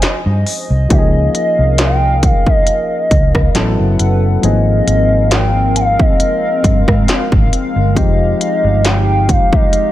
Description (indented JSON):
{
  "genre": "contemporary R&B",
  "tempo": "68 BPM",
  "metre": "4/4",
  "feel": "swing 54% on 16ths",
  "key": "Ab major",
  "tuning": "A4 = 441 Hz",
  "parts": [
    { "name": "gliding portamento lead", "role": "melody", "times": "0.0-9.9 s", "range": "Eb5 to Ab5", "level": "-17 LUFS", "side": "equal", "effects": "chorus, ping-pong delay" },
    { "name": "soft electric-piano-like synth keys", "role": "accompaniment", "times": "0.0-9.9 s", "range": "F3 to A4", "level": "-20 LUFS", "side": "left 3 dB", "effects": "chorus" },
    { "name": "hollow soft pad", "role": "sustained chords", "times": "0.0-9.9 s", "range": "Ab3 to F#5", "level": "-21 LUFS", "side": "left 1 dB", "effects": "chorus" },
    { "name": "vintage muted fingered electric bass", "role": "bass", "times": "0.0-9.4 s", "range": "F1 to Ab2", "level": "-14 LUFS", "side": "equal", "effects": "none" },
    { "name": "industrial drum kit", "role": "drums", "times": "0.0-9.9 s", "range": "hi-hat, kick drum, rim click, snare drum", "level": "-14 LUFS", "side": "equal", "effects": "none" }
  ],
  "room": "little or no reverb",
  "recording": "none",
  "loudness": "-10 LUFS",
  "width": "side -14 dB against mid",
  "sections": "0.0-9.9 A section",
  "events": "none",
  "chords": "0.0 Bbm11 (rootless); 0.9 Db69; 3.6 A69; 4.4 Ab69; 8.0 Fm9",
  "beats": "0.02 | 0.90 1.79 2.67 3.55 | 4.43 5.32 6.20 7.08 | 7.96 8.85 9.73"
}